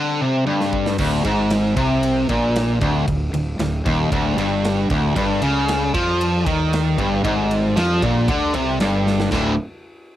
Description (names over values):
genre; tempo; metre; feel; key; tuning
hard rock; 115 BPM; 4/4; straight; unclear; A4 = 440 Hz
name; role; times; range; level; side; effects
overdriven tonewheel organ; sustained chords; 0.0-1.0, 5.2-9.6 s; G3 to E5; -34 LUFS; right 2 dB; none
cranked stack guitar; riff; 0.0-9.5 s; D2 to F3; -23 LUFS; right 8 dB; overdrive, cassette tape
overdriven semi-hollow guitar; riff; 0.0-9.5 s; D2 to F3; -20 LUFS; left 4 dB; cassette tape
big rock drum kit; drums; 0.5-9.4 s; china cymbal, crash cymbal, kick drum, ride cymbal, snare drum, toms; -27 LUFS; right 1 dB; cassette tape
fuzz fingered electric bass; bass; 1.0-9.6 s; D1 to F2; -25 LUFS; right 1 dB; overdrive
room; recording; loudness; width
light reverb; home recording on cassette; -17 LUFS; side -12 dB against mid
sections
1.0-9.3 A section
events
break 0.0-1.0; drum fill 0.5-1.0, 9.1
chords
0.0 G5; 1.0 G#maj9#11/D; 5.2 G5; 9.3 D5